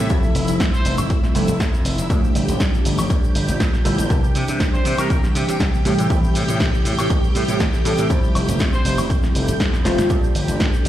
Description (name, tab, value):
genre	filtered disco house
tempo	120 BPM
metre	4/4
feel	straight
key	unclear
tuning	A4 = 441 Hz
part	funky polysynth comp	accompaniment	0.0-10.9 s	Bb2 to G4	-23 LUFS	equal	chorus, phaser, cassette tape, sidechain pumping
part	string machine, full ensemble	sustained chords	0.0-10.9 s	E4 to G5	-28 LUFS	right 1 dB	phaser, ensemble chorus, vintage 12-bit sampler grit, sidechain pumping
part	gritty slap bass	bass	0.0-10.9 s	F1 to C3	-23 LUFS	equal	overdrive, sidechain pumping
part	electronic kick drum	drums	0.1-10.7 s	none	-19 LUFS	equal	none
part	punchy analog drum machine	drums	0.1-10.9 s	hi-hat, shaker, snare drum, woodblock	-26 LUFS	equal	sidechain pumping on hats, sidechain pumping on cymbals, sidechain pumping on perc
part	tube shaker	percussion	0.1-10.8 s	none	-38 LUFS	left 3 dB	sidechain pumping on perc
part	bright trumpet section	melody	0.7-1.0, 4.7-5.2, 8.7-9.0 s	Bb4 to C5	-29 LUFS	equal	sidechain pumping, dub echo
room	light reverb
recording	played on a big sound system in a bare room, large studio reverb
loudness	-16 LUFS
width	side -12 dB against mid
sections	0.0-10.9 A section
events	drum fill 9.7-10.1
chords	0.1 Fmaj7; 2.1 Gm7; 4.1 C7; 5.9 Am7; 8.1 Fmaj7; 10.1 Gm7